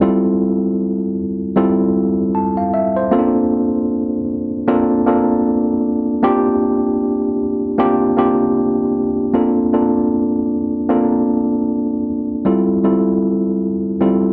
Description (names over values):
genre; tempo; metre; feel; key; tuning
soul; 77 BPM; 4/4; swing 58% on 16ths; unclear; A4 = 439 Hz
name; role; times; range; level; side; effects
tine electric piano; solo; 0.0-14.3 s; G3 to A5; -16 LUFS; equal; overdrive
room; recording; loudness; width
little or no reverb; dry, close 1970s-style studio recording; -17 LUFS; mono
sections
0.0-9.3 A section; 9.3-14.3 B section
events
none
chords
0.0 Fmaj7; 3.1 Bbmaj7; 6.2 C7sus4; 9.3 Bbmaj7; 12.5 Fmaj7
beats
| 0.01 0.79 1.57 2.35 | 3.12 3.90 4.68 5.46 | 6.24 7.01 7.79 8.57 | 9.35 10.12 10.90 11.68 | 12.46 13.24 14.02